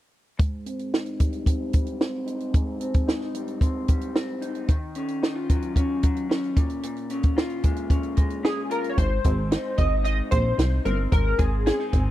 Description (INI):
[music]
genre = indie pop, bedroom pop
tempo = 112 BPM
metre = 4/4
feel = straight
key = Ab major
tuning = A4 = 440 Hz
[part]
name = electric guitar through a small old amp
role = accompaniment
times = 0.4-12.1 s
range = Ab2 to F4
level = -29 LUFS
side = left 1 dB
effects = lush chorus, vibrato effect, low-pass filter
[part]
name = compact cocktail drum kit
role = drums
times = 0.4-12.1 s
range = hi-hat, kick drum, snare drum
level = -22 LUFS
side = equal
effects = none
[part]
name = chorused retro synth keys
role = melody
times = 8.4-12.1 s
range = Ab4 to Eb5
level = -27 LUFS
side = left 1 dB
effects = ensemble chorus, slapback echo
[part]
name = plucky analog bass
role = bass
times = 9.0-12.1 s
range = G1 to C2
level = -24 LUFS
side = equal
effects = none
[sound]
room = little or no reverb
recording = dry, close 1970s-style studio recording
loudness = -22 LUFS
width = side -14 dB against mid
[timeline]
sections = 0.4-9.0 A section; 9.0-12.1 B section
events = filter sweep on clean electric guitar 0.4-9.0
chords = 0.4 Abmaj7; 4.7 Ebm9; 6.6 Bbm7; 9.0 Ab